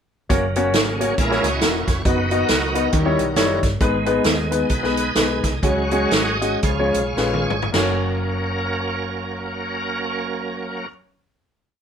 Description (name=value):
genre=uptempo gospel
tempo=102-137 BPM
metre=4/4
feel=swing 60% on 8ths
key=F# major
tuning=A4 = 441 Hz
part: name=warm grand piano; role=accompaniment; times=0.3-10.9 s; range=F#2 to D#5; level=-22 LUFS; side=left 2 dB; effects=none
part: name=bright tonewheel organ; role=sustained chords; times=0.3-10.9 s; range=C#3 to E#5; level=-24 LUFS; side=right 2 dB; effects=slow rotary speaker, chorus vibrato
part: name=hollow-body short-scale fingered electric bass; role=bass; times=0.3-10.9 s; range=E1 to D#2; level=-27 LUFS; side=equal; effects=none
part: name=swinging big-band drum kit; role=drums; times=0.3-7.9 s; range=china cymbal, hi-hat, kick drum, snare drum, toms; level=-21 LUFS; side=right 1 dB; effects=none
room=light reverb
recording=band playing live in one room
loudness=-18 LUFS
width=side -8 dB against mid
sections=0.3-7.7 breakdown; 7.7-11.8 final chord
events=tonewheel organ solo 0.3-7.7; slowing down 3.8-7.7; drum fill 7.2-7.7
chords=0.3 F#; 1.2 F#7/A#; 2.1 B/F#; 2.9 D#7b9; 3.8 G#m; 5.6 C#sus4; 6.6 C#; 7.7 F#